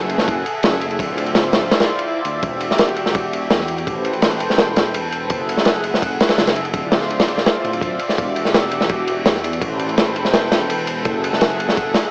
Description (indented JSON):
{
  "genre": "drum and bass, jungle",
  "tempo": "167 BPM",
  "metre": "4/4",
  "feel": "straight",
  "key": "unclear",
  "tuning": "A4 = 440 Hz",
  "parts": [
    { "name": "lush unison pad", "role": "sustained chords", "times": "0.0-12.1 s", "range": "F4 to G5", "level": "-25 LUFS", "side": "equal", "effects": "chorus, vintage 12-bit sampler grit, cassette tape" },
    { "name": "dark detuned saw bass", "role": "bass", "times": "0.0-11.9 s", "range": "D1 to E2", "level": "-29 LUFS", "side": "equal", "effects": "none" },
    { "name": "crunchy breakbeat drum kit", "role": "drums", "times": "0.0-12.1 s", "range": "kick drum, ride cymbal, snare drum", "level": "-20 LUFS", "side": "equal", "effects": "cassette tape" },
    { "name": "swell", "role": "sound effects", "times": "2.0-2.4 s", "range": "none", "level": "-33 LUFS", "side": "equal", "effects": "none" }
  ],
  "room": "moderate spring reverb, RT60 1.4 s",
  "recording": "home recording on cassette, vinyl crackle, small speaker sound",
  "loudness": "-18 LUFS",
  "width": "mono",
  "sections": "0.0-12.1 A section",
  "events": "none",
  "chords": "0.0 F#m9; 1.0 Dm9; 2.4 Em9; 3.9 Am9; 5.3 F#m9; 6.7 Dm9; 8.2 Em9; 9.6 Am9; 11.1 F#m9"
}